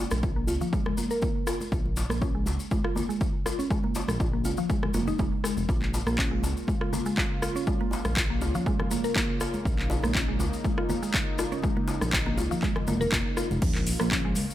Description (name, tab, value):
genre	afro house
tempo	121 BPM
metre	4/4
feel	swing 53% on 16ths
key	Bb minor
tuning	A4 = 440 Hz
part	smooth gliding synth bass	bass	0.1-14.5 s	F1 to Db2	-30 LUFS	equal	sidechain pumping
part	house drum kit	drums	0.1-14.5 s	crash cymbal, handclaps, hi-hat, rim click	-32 LUFS	equal	overdrive
part	congas	percussion	0.1-13.6 s	none	-38 LUFS	right 2 dB	none
part	maracas	percussion	0.1-14.5 s	none	-40 LUFS	left 4 dB	none
part	electronic kick drum	drums	0.2-14.2 s	none	-29 LUFS	equal	overdrive
part	djembe	percussion	0.2-13.5 s	none	-38 LUFS	left 2 dB	none
part	mallet-like synth pluck	arpeggios	0.4-14.3 s	F3 to Bb4	-31 LUFS	equal	chorus, sidechain pumping, digital delay
part	warm analog pad	sustained chords	5.7-14.5 s	Db3 to F4	-36 LUFS	equal	chorus, sidechain pumping
part	sub drop	sound effects	13.6-14.5 s	none	-36 LUFS	equal	none
room	light reverb, digital ambience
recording	none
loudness	-25 LUFS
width	side -13 dB against mid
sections	0.0-13.6 A section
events	filter sweep on synth pluck 0.0-13.6; impact 13.6-14.5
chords	0.0 Bbm